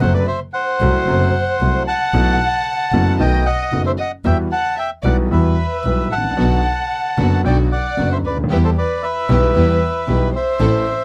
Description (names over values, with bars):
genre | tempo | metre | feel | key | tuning
tango | 113 BPM | 4/4 | rubato | E minor | A4 = 441 Hz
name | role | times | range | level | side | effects
bandoneon | melody | 0.0-11.0 s | A4 to A5 | -23 LUFS | equal | none
warm chamber violin section | second line | 0.0-11.0 s | A4 to F#5 | -27 LUFS | equal | none
clear concert grand piano | accompaniment | 0.0-10.8 s | F#1 to A4 | -22 LUFS | equal | none
rich double bass | bass | 0.0-10.8 s | F#1 to E2 | -21 LUFS | equal | none
clear studio string section | stabs | 6.4-10.8 s | B3 to A4 | -29 LUFS | equal | none
room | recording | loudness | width
light reverb | dry, close 1970s-style studio recording | -17 LUFS | mono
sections
0.0-11.0 A section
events
none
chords
0.0 F#dim; 2.1 B7sus4; 3.2 B7; 4.2 Emadd9; 6.4 Bm; 8.5 Em